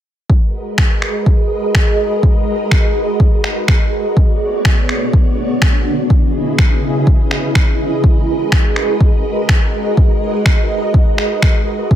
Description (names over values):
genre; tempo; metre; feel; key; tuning
deep house; 124 BPM; 4/4; swing 55% on 16ths; G# minor; A4 = 441 Hz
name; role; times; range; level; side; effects
soft string machine; sustained chords; 0.3-12.0 s; C#3 to D#5; -22 LUFS; equal; ensemble chorus, sidechain pumping
electronic kick drum; drums; 0.3-12.0 s; none; -12 LUFS; equal; overdrive
granular cloud pad; texture; 0.7-12.0 s; B3 to D#5; -19 LUFS; right 1 dB; built-in reverb, sidechain pumping
electronic finger snaps; drums; 0.8-11.5 s; none; -19 LUFS; equal; none
room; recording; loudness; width
light reverb; none; -12 LUFS; side -11 dB against mid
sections
0.3-12.0 A section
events
none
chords
0.3 G#m7; 4.2 Bm7; 6.1 C#m7; 8.0 G#m7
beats
| 0.30 0.78 1.26 1.75 | 2.23 2.71 3.20 3.68 | 4.17 4.65 5.13 5.62 | 6.10 6.59 7.07 7.55 | 8.04 8.52 9.01 9.49 | 9.97 10.46 10.94 11.43 | 11.91